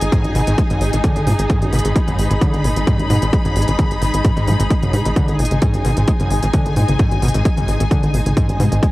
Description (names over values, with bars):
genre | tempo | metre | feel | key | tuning
driving peak-time techno | 131 BPM | 4/4 | straight | G# minor | A4 = 440 Hz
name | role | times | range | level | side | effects
tight sequencer bass | bass | 0.0-8.8 s | G#1 to G#2 | -19 LUFS | equal | sidechain pumping
swarming drone | drone | 0.0-8.9 s | G#2 to G#3 | -30 LUFS | equal | none
techno drum kit | drums | 0.0-8.9 s | hi-hat, toms | -27 LUFS | equal | overdrive, sidechain pumping on hats, sidechain pumping on toms
rich studio string section | texture | 0.0-8.9 s | D#4 to B5 | -23 LUFS | left 1 dB | sidechain pumping, cassette tape
overdriven acid bass | riff | 0.1-8.9 s | F#2 to G#3 | -21 LUFS | equal | distortion, wide subtle chorus, sidechain pumping, cassette tape, tape echo
electronic kick drum | drums | 0.1-8.9 s | none | -17 LUFS | equal | overdrive
room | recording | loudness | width
light reverb | home recording on cassette | -14 LUFS | side -18 dB against mid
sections
0.0-8.9 A section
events
none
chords
0.0 G#5